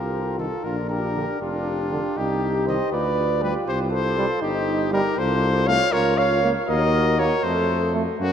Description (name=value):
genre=classical, brass quintet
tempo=79 BPM (dotted quarters)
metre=6/8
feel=rubato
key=unclear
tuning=A4 = 442 Hz
part: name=clear trumpet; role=melody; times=0.0-8.3 s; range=F4 to F5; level=-25 LUFS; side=left 4 dB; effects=none
part: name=mellow flugelhorn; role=second line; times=0.0-8.3 s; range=Db4 to Db5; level=-25 LUFS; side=right 5 dB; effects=none
part: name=clear French horn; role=accompaniment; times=0.0-8.3 s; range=A3 to G4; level=-28 LUFS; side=left 2 dB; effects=none
part: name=mellow tuba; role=bass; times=0.0-8.3 s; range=F1 to Gb2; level=-26 LUFS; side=equal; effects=none
part: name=warm trombone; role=accompaniment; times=0.4-8.3 s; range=D3 to Bb3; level=-32 LUFS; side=right 3 dB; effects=none
room=wet cathedral reverb, RT60 4.9 s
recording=in a vast, echoing space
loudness=-20 LUFS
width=side -8 dB against mid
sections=0.0-8.3 A section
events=none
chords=0.0 F5/C; 0.6 Bb; 2.2 Cm; 2.9 G7/D; 3.7 Cm; 5.2 F/C; 5.9 Bbm/Db; 6.7 Ebm; 7.4 F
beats=| 0.64 1.41 | 2.17 2.93 | 3.68 4.43 | 5.18 5.93 | 6.69 7.44 | 8.20